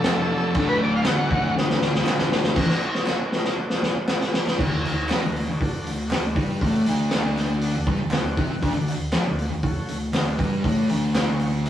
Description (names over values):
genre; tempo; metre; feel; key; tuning
garage rock duo or trio; 119 BPM; 4/4; straight; D major; A4 = 440 Hz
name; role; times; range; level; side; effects
combo organ; melody; 0.0-1.5 s; A4 to F#5; -25 LUFS; left 1 dB; none
combo organ; sustained chords; 0.0-11.7 s; F4 to A5; -36 LUFS; equal; none
thick fuzz guitar; riff; 0.0-11.7 s; D2 to C4; -23 LUFS; equal; distortion
vintage drum kit; drums; 0.0-11.7 s; crash cymbal, hi-hat, kick drum, snare drum; -23 LUFS; equal; none
group handclap; percussion; 0.1-11.3 s; none; -33 LUFS; equal; none
room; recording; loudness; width
wet studio reverb, RT60 0.6 s; rough rehearsal-room recording, tube saturation, small room ambience; -20 LUFS; side -11 dB against mid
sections
0.0-2.6 A section; 2.6-4.6 B section; 4.6-11.7 C section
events
drum fill 1.6-2.6, 2.6-4.6; transistor combo organ fill 7.6-8.6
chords
0.0 F; 0.5 D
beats
0.04 | 0.55 1.05 1.55 2.06 | 2.56 3.07 3.57 4.08 | 4.59 5.09 5.60 6.11 | 6.61 7.12 7.62 8.13 | 8.63 9.14 9.64 10.15 | 10.65 11.16 11.66